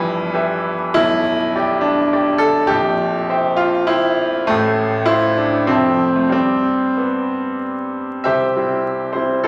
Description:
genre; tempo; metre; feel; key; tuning
classical, romantic character piece for solo piano; 90-105 BPM; 3/4; rubato; C major; A4 = 440 Hz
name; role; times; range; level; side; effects
bright grand piano; solo; 0.0-9.5 s; Bb0 to C6; -18 LUFS; equal; none
room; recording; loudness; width
wet recital hall reverb, RT60 1.7 s; vinyl crackle; -18 LUFS; mono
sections
0.0-8.3 A section; 8.3-9.5 B section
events
none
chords
0.0 Em/G; 1.0 G/B; 2.7 C7/Bb; 4.5 F/A; 5.7 Fmaj7; 6.3 G; 8.3 C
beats
0.34 | 0.97 1.56 2.13 | 2.71 3.30 3.90 | 4.49 5.08 5.69 | 6.34 6.99 7.63 | 8.26 8.85 9.45

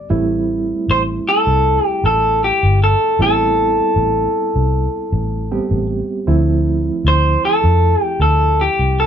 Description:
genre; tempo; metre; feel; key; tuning
straight-eighth soul blues; 78 BPM; 4/4; swing 54% on 16ths; A minor; A4 = 440 Hz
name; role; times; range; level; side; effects
overdriven reed electric piano; accompaniment; 0.0-9.1 s; F3 to G4; -22 LUFS; right 4 dB; fast tremolo
vintage muted fingered electric bass; bass; 0.1-9.1 s; G1 to F2; -17 LUFS; equal; none
electric guitar through a small old amp; melody; 0.9-9.1 s; G4 to C5; -15 LUFS; equal; none
room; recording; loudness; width
moderate studio reverb, RT60 0.6 s; band playing live in one room; -13 LUFS; side -8 dB against mid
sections
0.0-9.1 A section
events
none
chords
0.0 Am7; 6.3 Dm7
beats
| 0.12 0.89 1.66 2.43 | 3.20 3.97 4.74 5.50 | 6.28 7.04 7.82 8.59

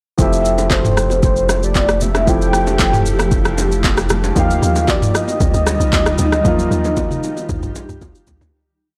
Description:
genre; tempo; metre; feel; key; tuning
amapiano; 115 BPM; 4/4; straight; F major; A4 = 440 Hz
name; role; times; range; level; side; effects
warm velvety synth lead; melody; 0.2-8.0 s; C5 to G5; -23 LUFS; equal; chorus, tape echo
warm concert grand piano; accompaniment; 0.2-8.6 s; F3 to G4; -24 LUFS; equal; none
granular cloud pad; sustained chords; 1.2-8.5 s; Eb3 to G4; -26 LUFS; equal; built-in reverb, sidechain pumping
saturated sub bass; bass; 0.2-4.3 s; F1; -22 LUFS; equal; none
afro-pop drum kit; drums; 0.2-8.5 s; handclaps, kick drum, rim click, shaker, toms; -20 LUFS; equal; none
congas and bongos; percussion; 0.2-8.5 s; none; -28 LUFS; equal; none
deep log drum bass; bass; 4.4-8.5 s; Bb1 to Eb2; -21 LUFS; equal; none
room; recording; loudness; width
little or no reverb; blown-out, overdriven recording, overdrive; -16 LUFS; mono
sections
0.2-8.5 groove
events
fade-out 6.5-8.5; drum fill 6.5-8.5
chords
0.2 Fmaj9; 4.4 Ebmaj9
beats
| 0.19 0.71 1.23 1.75 | 2.28 2.80 3.32 3.84 | 4.36 4.88 5.41 5.93 | 6.45 6.97 7.49 8.02

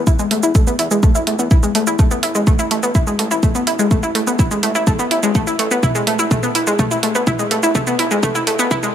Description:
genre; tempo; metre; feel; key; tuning
melodic techno; 125 BPM; 4/4; straight; A harmonic minor; A4 = 440 Hz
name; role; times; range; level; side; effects
fat analog bass; bass; 0.0-8.9 s; E1 to E2; -28 LUFS; equal; sidechain pumping, high-pass filter
analog pluck; arpeggios; 0.1-8.9 s; G#3 to E4; -17 LUFS; equal; chorus, sidechain pumping, dub echo
electronic kick drum; drums; 0.1-8.8 s; none; -15 LUFS; equal; none
house drum kit; drums; 0.1-8.9 s; hi-hat, shaker, toms; -22 LUFS; right 3 dB; none
room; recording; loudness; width
light reverb; high-pass filter; -14 LUFS; side -10 dB against mid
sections
0.0-8.9 A section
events
build-up 0.0-8.9; filter sweep 0.0-8.9; drum fill 5.8-8.9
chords
0.0 Esus4; 2.0 Asus2; 5.8 Fmaj7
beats
| 0.07 0.55 1.03 1.51 | 1.99 2.47 2.95 3.43 | 3.91 4.39 4.87 5.35 | 5.83 6.31 6.79 7.27 | 7.75 8.23 8.71

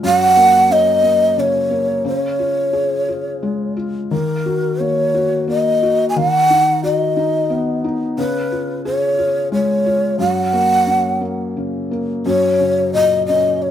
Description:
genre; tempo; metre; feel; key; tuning
children's music; 89 BPM; 3/4; straight; F# major; A4 = 440 Hz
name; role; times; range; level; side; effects
felt-muted upright piano; accompaniment; 0.0-13.7 s; F#2 to G#4; -20 LUFS; left 2 dB; none
breathy long shakuhachi; melody; 0.1-13.7 s; A#4 to G#5; -15 LUFS; equal; none
room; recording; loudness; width
moderate stone room reverb, RT60 1.0 s; band playing live in one room; -14 LUFS; side -10 dB against mid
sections
0.0-12.3 A section; 12.3-13.7 B section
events
none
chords
0.0 F#; 2.1 C#; 4.1 D#m; 6.2 B/D#; 8.2 C#; 10.2 F#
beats
| 0.04 0.71 1.38 | 2.06 2.74 3.43 | 4.12 4.80 5.49 | 6.16 6.83 7.50 | 8.18 8.85 9.52 | 10.20 10.87 11.56 | 12.26 12.94 13.62

